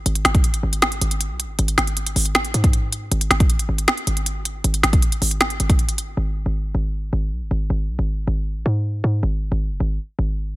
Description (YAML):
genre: hip hop, trap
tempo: 157 BPM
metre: 4/4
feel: half-time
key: G# phrygian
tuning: A4 = 440 Hz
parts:
  - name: short 808-style bass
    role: bass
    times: 0.0-10.6 s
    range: F#1 to G#2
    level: -22 LUFS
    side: equal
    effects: none
  - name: organic electronic drum kit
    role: drums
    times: 0.1-6.1 s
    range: hi-hat, kick drum, snare drum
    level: -18 LUFS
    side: equal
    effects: soft clipping on snare
room: little or no reverb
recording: dense, heavily limited modern master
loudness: -18 LUFS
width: side -18 dB against mid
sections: 0.0-6.2 A section; 6.2-10.6 B section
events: none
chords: none